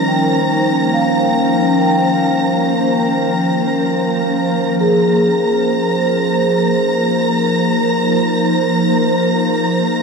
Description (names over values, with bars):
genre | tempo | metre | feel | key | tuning
ambient | free time | none | none | Eb mixolydian | A4 = 440 Hz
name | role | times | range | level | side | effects
ethereal airy pad | sustained chords | 0.0-10.0 s | F3 to C5 | -15 LUFS | equal | ensemble chorus, built-in reverb
vibraphone with soft mallets | arpeggios | 0.0-10.0 s | Eb4 to G5 | -20 LUFS | left 1 dB | ping-pong delay
analog drone | drone | 0.0-4.9 s | Eb3 to Bb3 | -26 LUFS | equal | chorus, phaser
dark symphonic violin section | texture | 0.0-10.0 s | Bb5 to Bb6 | -21 LUFS | right 1 dB | none
room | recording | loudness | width
wet lush hall reverb, RT60 3.0 s | none | -13 LUFS | side -4 dB against mid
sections
0.0-4.8 A section; 4.8-10.0 A section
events
none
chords
0.0 Ebsus2; 4.8 Eb9sus4